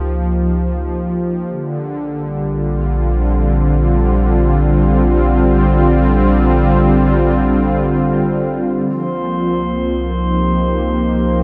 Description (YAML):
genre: ambient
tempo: free time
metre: none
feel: none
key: unclear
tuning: A4 = 440 Hz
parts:
  - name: warm analog pad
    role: sustained chords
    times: 0.0-11.4 s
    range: D3 to G4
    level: -17 LUFS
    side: equal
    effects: chorus, tremolo
  - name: round analog bass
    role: bass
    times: 0.0-11.4 s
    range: Bb1 to Db2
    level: -20 LUFS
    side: equal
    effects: none
  - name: glass harmonica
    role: texture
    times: 8.9-11.4 s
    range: C5 to C6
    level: -25 LUFS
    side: equal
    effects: none
room: moderate huge ambient reverb, RT60 8.6 s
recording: dark, warm production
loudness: -15 LUFS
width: mono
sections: 0.0-8.9 A section; 8.9-11.4 B section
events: none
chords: 0.0 Db; 1.5 Bb; 8.9 Cm7